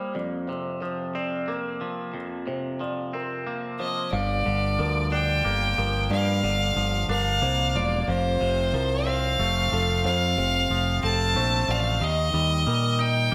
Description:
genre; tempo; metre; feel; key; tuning
post-rock; 61 BPM (dotted quarters); 6/8; straight; G minor; A4 = 444 Hz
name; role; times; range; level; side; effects
felt-muted upright piano; arpeggios; 0.0-13.3 s; A4 to F5; -35 LUFS; equal; slapback echo
twangy electric guitar; arpeggios; 0.0-13.3 s; F2 to Eb4; -33 LUFS; equal; subtle chorus, slapback echo
clear violin; melody; 3.8-13.3 s; C5 to A5; -28 LUFS; equal; slapback echo
growling fingered electric bass; bass; 4.1-13.3 s; E1 to Bb2; -28 LUFS; equal; overdrive
room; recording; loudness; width
moderate lush hall reverb, RT60 1.6 s, studio reverb; big arena sound; -25 LUFS; mono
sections
0.0-4.1 A section; 4.1-13.3 B section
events
none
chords
0.2 Bbsus2/F; 4.1 Gm7; 8.1 F; 12.0 Eb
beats
| 0.15 1.15 | 2.14 3.14 | 4.13 5.12 | 6.11 7.10 | 8.08 9.07 | 10.05 11.04 | 12.02 13.00

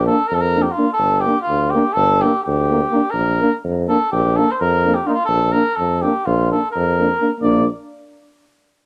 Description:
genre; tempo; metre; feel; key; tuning
balkan folk, Balkan brass band; 252 BPM (eighths); 9/8; straight; Bb major; A4 = 438 Hz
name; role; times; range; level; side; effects
cornet with cup mute; melody; 0.0-7.7 s; Eb4 to D5; -20 LUFS; equal; cassette tape
warm tuba; bass; 0.0-7.7 s; G1 to F2; -22 LUFS; equal; none
clear euphonium; accompaniment; 0.1-7.7 s; Bb3; -24 LUFS; equal; cassette tape
dark euphonium; accompaniment; 0.1-7.7 s; D4; -25 LUFS; equal; cassette tape
room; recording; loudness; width
light reverb, studio ambience; home recording on cassette, lossy compression artefacts; -17 LUFS; mono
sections
0.0-7.4 A section; 7.4-8.9 B section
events
none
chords
0.0 Bb; 1.0 Gm; 3.1 Bb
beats
0.03 0.27 0.51 0.74 | 0.98 1.22 1.46 1.70 1.94 2.17 2.41 2.65 2.89 | 3.13 3.36 3.60 3.84 4.08 4.32 4.55 4.79 5.03 | 5.27 5.50 5.74 5.98 6.22 6.46 6.69 6.93 7.17 | 7.41 7.64

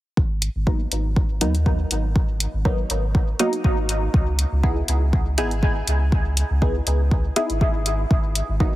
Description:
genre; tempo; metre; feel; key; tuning
dub techno; 121 BPM; 4/4; swing 54% on 16ths; G# minor; A4 = 440 Hz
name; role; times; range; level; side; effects
pure sine sub bass; bass; 0.2-8.8 s; G#1 to D#2; -23 LUFS; equal; sidechain pumping
electronic kick drum; drums; 0.2-8.7 s; none; -20 LUFS; equal; none
electronic hi-hat; drums; 0.4-8.5 s; none; -24 LUFS; left 1 dB; none
filtered dub chord stab; stabs; 0.7-8.7 s; F#3 to G#4; -26 LUFS; equal; chorus, phaser, sidechain pumping, dub echo
room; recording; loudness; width
light reverb, digital ambience; heavily compressed radio sound, multiband compression; -19 LUFS; side -16 dB against mid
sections
0.2-8.8 A section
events
none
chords
0.2 G#m9; 4.1 C#m9; 8.1 G#m9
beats
| 0.17 0.67 1.16 1.66 | 2.16 2.65 3.15 3.64 | 4.14 4.63 5.13 5.63 | 6.12 6.62 7.12 7.61 | 8.11 8.60

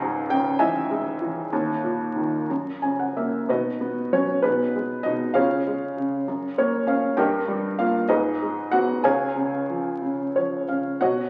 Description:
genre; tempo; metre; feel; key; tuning
classical, lyrical solo piano; 59-67 BPM (dotted quarters); 6/8; rubato; unclear; A4 = 440 Hz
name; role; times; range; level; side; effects
felt-muted upright piano; solo; 0.0-11.3 s; C#2 to G#5; -24 LUFS; equal; none
room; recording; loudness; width
wet recital hall reverb, RT60 1.3 s; very old 78 rpm record, vinyl crackle; -24 LUFS; mono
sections
0.0-3.5 A section; 3.5-11.3 B section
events
felt piano fill 2.5-3.5, 6.3-7.2, 10.0-11.0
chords
0.0 C#madd9; 1.5 D#5; 2.5 F#7; 3.5 B; 4.4 G#m/B; 5.4 C#; 6.3 F#; 7.2 D#/G; 8.1 G#m; 9.0 C#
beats
0.59 | 1.51 2.48 | 3.48 4.44 | 5.36 6.27 | 7.18 8.10 | 9.04 10.02 | 11.01

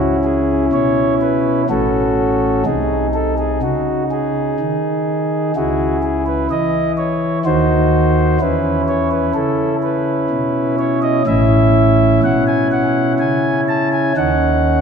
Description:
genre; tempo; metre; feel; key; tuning
classical, chorale-style piece for pipe organ; 62 BPM; 3/4; rubato; C# minor; A4 = 440 Hz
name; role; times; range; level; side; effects
chamber organ, principal; solo; 0.0-14.8 s; A1 to A5; -14 LUFS; equal; none
room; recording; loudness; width
wet concert hall reverb, RT60 2.1 s; none; -14 LUFS; side -6 dB against mid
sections
0.0-14.8 A section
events
none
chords
0.0 C#m; 1.7 F#m/A; 2.7 G#/B#; 5.6 C#m; 7.5 D#m6; 8.4 C#m/E; 11.3 A; 14.2 D#m7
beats
0.73 1.69 | 2.66 3.63 4.60 | 5.56 6.51 7.47 | 8.42 9.37 10.31 | 11.27 12.23 13.20 | 14.17

